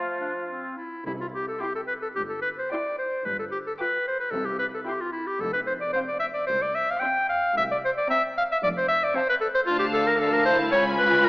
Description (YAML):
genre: quick classical-period movement for symphony orchestra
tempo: 112 BPM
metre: 4/4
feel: rubato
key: C major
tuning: A4 = 440 Hz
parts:
  - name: bright clarinet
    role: second line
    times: 0.0-11.3 s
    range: A3 to G5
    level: -23 LUFS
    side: equal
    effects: none
  - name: small flute group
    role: second line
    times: 0.0-0.7 s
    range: F5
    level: -42 LUFS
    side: left 2 dB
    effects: none
  - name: warm oboe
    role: second line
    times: 0.0-0.7 s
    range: F4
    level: -32 LUFS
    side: equal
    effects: none
  - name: mellow bassoon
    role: accompaniment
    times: 0.0-0.7 s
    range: F3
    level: -34 LUFS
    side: equal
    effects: none
  - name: muted studio cello section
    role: bass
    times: 1.1-11.3 s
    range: C2 to C3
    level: -36 LUFS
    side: equal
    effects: none
  - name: muted studio double bass section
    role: bass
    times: 1.1-11.3 s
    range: F1 to D2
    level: -41 LUFS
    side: right 1 dB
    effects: none
  - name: timpani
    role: percussion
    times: 1.1-6.2 s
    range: F2 to C3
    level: -41 LUFS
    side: equal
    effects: none
  - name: muted studio violin section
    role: melody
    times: 1.6-11.3 s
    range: A5 to D6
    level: -32 LUFS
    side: left 1 dB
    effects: none
  - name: muted studio violin section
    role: second line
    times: 1.6-11.3 s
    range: F5 to Ab5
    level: -34 LUFS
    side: left 1 dB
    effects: none
  - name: muted studio viola section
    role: accompaniment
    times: 1.6-11.3 s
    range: C4 to F4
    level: -30 LUFS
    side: equal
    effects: none
room: wet scoring stage reverb, RT60 1.9 s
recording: AM radio sound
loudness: -23 LUFS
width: side -23 dB against mid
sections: 0.0-1.1 A section; 1.1-11.3 B section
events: none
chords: 0.0 F5; 1.1 C; 3.3 G5; 4.3 C; 5.4 F5; 7.6 C5; 8.6 F; 9.7 Dm; 10.7 Db7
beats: 0.49 | 1.07 1.62 2.17 2.73 | 3.26 3.81 4.35 4.88 | 5.42 5.95 6.48 7.02 | 7.56 8.10 8.63 9.15 | 9.68 10.20 10.74 11.27